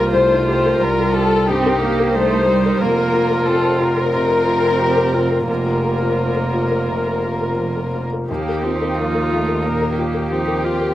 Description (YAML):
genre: neoclassical piano and strings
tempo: 89 BPM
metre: 4/4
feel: rubato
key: unclear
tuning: A4 = 440 Hz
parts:
  - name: muted symphonic violin section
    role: melody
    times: 0.0-10.9 s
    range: F4 to C5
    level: -20 LUFS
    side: left 3 dB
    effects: none
  - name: muted cello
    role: second line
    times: 0.0-10.9 s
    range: G3 to C4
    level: -23 LUFS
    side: right 5 dB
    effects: none
  - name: felt-muted upright piano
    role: accompaniment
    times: 0.0-10.9 s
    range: C2 to Bb4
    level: -23 LUFS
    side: left 2 dB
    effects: slapback echo
  - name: muted viola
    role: accompaniment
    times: 0.0-10.9 s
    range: Eb4 to G4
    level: -24 LUFS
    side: right 2 dB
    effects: none
  - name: muted double bass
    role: bass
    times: 0.0-10.9 s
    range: F1 to Eb2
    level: -23 LUFS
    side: equal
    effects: none
room: little or no reverb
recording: recorded outdoors, with no room sound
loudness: -15 LUFS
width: side -13 dB against mid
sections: 0.0-10.9 A section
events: none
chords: 0.0 Cm7; 2.8 Fsus4; 8.3 Ebsus2